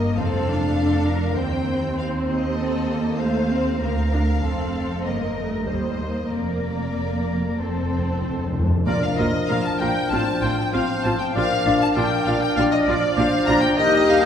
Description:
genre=quick classical-period movement for symphony orchestra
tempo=97 BPM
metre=4/4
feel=rubato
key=Bb major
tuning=A4 = 441 Hz
part: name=rich studio violin section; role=melody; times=0.0-14.3 s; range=C5 to Bb5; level=-28 LUFS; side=left 5 dB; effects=none
part: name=warm studio violin section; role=second line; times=0.0-14.3 s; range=A4 to Bb5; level=-28 LUFS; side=left 2 dB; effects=none
part: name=dark studio viola section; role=accompaniment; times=0.0-14.3 s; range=G3 to G4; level=-25 LUFS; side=equal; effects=none
part: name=warm studio cello section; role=bass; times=0.0-14.3 s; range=D2 to Bb2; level=-28 LUFS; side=right 2 dB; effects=none
part: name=warm studio double bass section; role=bass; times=0.0-14.3 s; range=F1 to Eb2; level=-27 LUFS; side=right 2 dB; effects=none
part: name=timpani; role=percussion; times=0.2-1.0, 7.6-9.8 s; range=F2 to Bb2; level=-27 LUFS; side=equal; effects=none
part: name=clear oboe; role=second line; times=8.9-14.3 s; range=Bb4 to Eb5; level=-29 LUFS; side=right 1 dB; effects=none
part: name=flute section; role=second line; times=8.9-14.3 s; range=F6 to G6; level=-30 LUFS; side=left 1 dB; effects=none
part: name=mellow clarinet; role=second line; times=8.9-14.3 s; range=Bb4 to D5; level=-28 LUFS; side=left 1 dB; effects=none
part: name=warm French horn section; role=sustained chords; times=8.9-14.3 s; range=F3 to Eb4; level=-25 LUFS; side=left 1 dB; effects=none
room=wet concert hall reverb, RT60 2.0 s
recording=heard from further back in the room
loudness=-19 LUFS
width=side -8 dB against mid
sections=0.0-8.9 A section; 8.9-14.3 B section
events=timpani fill 7.6-8.9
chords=0.2 F; 1.4 F7/Eb; 3.8 Bb/D; 5.0 Eb/G; 6.3 Bb/F; 7.6 F; 8.9 Bb; 10.1 F/A; 11.3 Bb

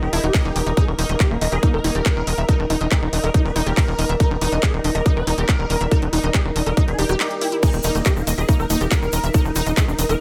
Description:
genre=psychedelic trance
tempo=140 BPM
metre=4/4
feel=straight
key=Eb major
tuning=A4 = 442 Hz
part: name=swarming rave lead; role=melody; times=0.0-10.2 s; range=Bb3 to Cb5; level=-29 LUFS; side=equal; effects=chorus, phaser, sidechain pumping, tape echo
part: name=swarming drone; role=sustained chords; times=0.0-10.2 s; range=Bb4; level=-33 LUFS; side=equal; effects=built-in reverb, sidechain pumping
part: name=tight sequencer bass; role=bass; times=0.0-10.2 s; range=Eb1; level=-24 LUFS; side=equal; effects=tube saturation
part: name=deep dark ambient pad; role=texture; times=0.0-10.2 s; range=Eb4 to Eb5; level=-33 LUFS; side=equal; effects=none
part: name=unison pluck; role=riff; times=0.1-10.2 s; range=Eb4 to Fb5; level=-30 LUFS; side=equal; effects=sidechain pumping, dub echo
part: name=big-room dance drum kit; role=drums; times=0.1-10.2 s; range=crash cymbal, handclaps, hi-hat, ride cymbal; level=-29 LUFS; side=equal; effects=overdrive, studio reverb
part: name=electronic kick drum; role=drums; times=0.3-9.9 s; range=none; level=-20 LUFS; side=equal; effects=studio reverb
part: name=swell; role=sound effects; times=7.0-7.6 s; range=none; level=-39 LUFS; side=equal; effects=none
part: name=egg shaker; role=percussion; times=7.6-10.2 s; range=none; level=-35 LUFS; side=equal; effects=none
room=little or no reverb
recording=none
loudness=-19 LUFS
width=mono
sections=0.0-10.2 A section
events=none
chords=0.0 Eb5

